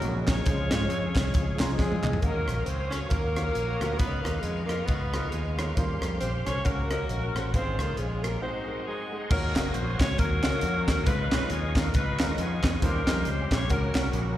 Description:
uptempo gospel; 136 BPM; 4/4; swing 58% on 8ths; A4 = 440 Hz
clear saxophone section; melody; 0.0-14.4 s; Cb4 to Db5; -33 LUFS; left 2 dB; plate reverb, slapback echo, tape echo
clear baby grand piano; accompaniment; 0.0-14.4 s; Ab2 to C6; -36 LUFS; left 1 dB; plate reverb, slapback echo
bright tonewheel organ; sustained chords; 0.0-14.4 s; Db3 to Eb6; -37 LUFS; right 2 dB; slow rotary speaker, chorus vibrato, plate reverb
fingered electric bass; bass; 0.0-14.4 s; Gb1 to Ab2; -29 LUFS; equal
crisp fusion drum kit; drums; 0.0-14.3 s; crash cymbal, hi-hat, kick drum, rim click, snare drum, toms; -28 LUFS; equal
group handclap; percussion; 0.3-2.1, 9.6-14.0 s; -38 LUFS; right 3 dB; slapback echo
breathy tenor saxophone; melody; 1.8-9.3 s; Ab3 to Db4; -34 LUFS; right 2 dB; plate reverb, slapback echo
bright symphonic string section; sustained chords; 2.2-9.3 s; F3 to F5; -44 LUFS; left 2 dB; plate reverb
light reverb; live gig heard through the venue's PA, recital hall reverb; -25 LUFS; side -13 dB against mid
0.0-2.2 A section; 2.2-9.3 B section; 9.3-14.4 A section
grand piano fill 1.3-2.2; drum fill 1.8-2.2; break 8.4-9.3
0.5 Dbmaj7; 2.2 Ebm9; 4.0 Db9; 5.8 Eb13; 6.7 Gb/Db; 7.5 Db/Ab; 8.4 Ab7; 9.3 Ebm9; 11.1 Db9; 12.8 Eb13; 13.7 Gb
0.02 | 0.46 0.90 1.34 1.79 | 2.23 2.67 3.11 3.55 | 4.00 4.44 4.88 5.33 | 5.77 6.21 6.66 7.10 | 7.54 7.98 8.43 8.87 | 9.31 9.75 10.19 10.63 | 11.07 11.51 11.95 12.39 | 12.83 13.27 13.71 14.14

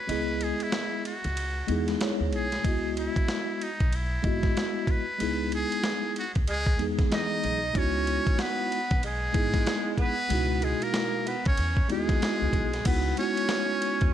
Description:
hip hop, jazz-hop; 94 BPM; 4/4; swing 61% on 16ths; C# minor; A4 = 440 Hz
trumpet with metal mute; melody; 0.0-14.1 s; D#4 to D#5; -31 LUFS; equal; analog delay
mellow tine electric piano; accompaniment; 0.1-14.1 s; B2 to D#5; -30 LUFS; left 1 dB; medium stereo tremolo
upright bass; bass; 0.1-14.1 s; G#1 to E2; -31 LUFS; equal
dusty soul sampler-style drum kit; drums; 0.1-14.1 s; crash cymbal, hi-hat, kick drum, ride cymbal, snare drum; -29 LUFS; equal
breathy tenor saxophone; second line; 6.5-14.1 s; G#3 to D#4; -34 LUFS; right 2 dB
light reverb, small room ambience; -25 LUFS; side -10 dB against mid
0.0-2.6 A section; 2.6-12.9 A section; 12.9-14.1 B section
kick muted 0.1-2.6; tine electric piano fill 1.7-2.6
0.0 C#m11
| 0.09 0.73 1.37 2.01 | 2.65 3.29 3.92 4.56 | 5.20 5.84 6.48 7.12 | 7.75 8.39 9.03 9.67 | 10.31 10.94 11.58 12.22 | 12.86 13.50 14.14

